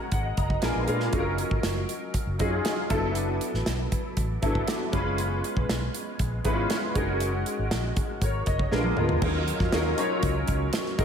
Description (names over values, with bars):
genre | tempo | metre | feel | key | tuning
polished 1980s jazz-funk pop | 119 BPM | 4/4 | straight | unclear | A4 = 440 Hz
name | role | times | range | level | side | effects
clear grand piano | accompaniment | 0.0-11.0 s | F#3 to A#5 | -27 LUFS | equal | ensemble chorus
vintage muted fingered electric bass | bass | 0.1-11.0 s | F#1 to A#2 | -30 LUFS | equal | none
modern studio drum kit | drums | 0.1-11.0 s | crash cymbal, hi-hat, kick drum, snare drum, toms | -29 LUFS | equal | none
room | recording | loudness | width
moderate lush hall reverb, RT60 1.7 s, studio ambience | dreamy mix soaked in reverb | -24 LUFS | side -7 dB against mid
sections
0.0-9.2 A section; 9.2-11.0 B section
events
grand piano fill 0.1-1.1; drum fill 8.7-9.2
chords
0.0 F#69; 0.6 A#7b9; 1.1 D#m9/F#; 2.9 D69/F#; 4.9 C#7/F#; 7.0 F#69; 8.7 A#7b9; 9.2 D#m9